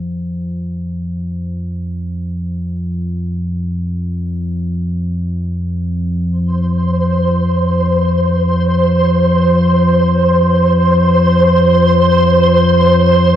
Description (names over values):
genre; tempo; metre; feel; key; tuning
dark ambient drone; free time; none; none; unclear; A4 = 440 Hz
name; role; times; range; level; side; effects
deep rumbling drone; drone; 0.0-13.4 s; F2 to F3; -14 LUFS; left 1 dB; built-in reverb
flickering grainy texture; texture; 6.5-13.4 s; C5; -13 LUFS; right 1 dB; built-in reverb
room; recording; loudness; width
wet huge ambient reverb, RT60 8.4 s; none; -12 LUFS; side -10 dB against mid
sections
0.0-13.4 A section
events
fade-in on synth drone 0.0-13.4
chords
0.0 N.C.; 6.3 F5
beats
free time